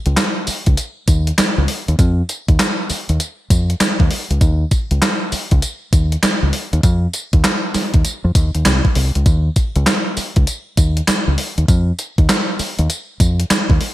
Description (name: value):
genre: R&B, new jack swing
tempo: 99 BPM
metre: 4/4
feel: swing 64% on 16ths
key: unclear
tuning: A4 = 441 Hz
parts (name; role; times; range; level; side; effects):
- deep dub fingered electric bass; bass; 0.1-13.8 s; C2 to F2; -16 LUFS; equal; none
- gated 80s digital drum machine; drums; 0.1-13.9 s; handclaps, hi-hat, kick drum, snare drum, tambourine; -15 LUFS; equal; gated reverb, gated reverb snare, overdrive
room: little or no reverb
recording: bright 1980s-style digital production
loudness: -14 LUFS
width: side -15 dB against mid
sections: 0.0-13.9 A section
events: none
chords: none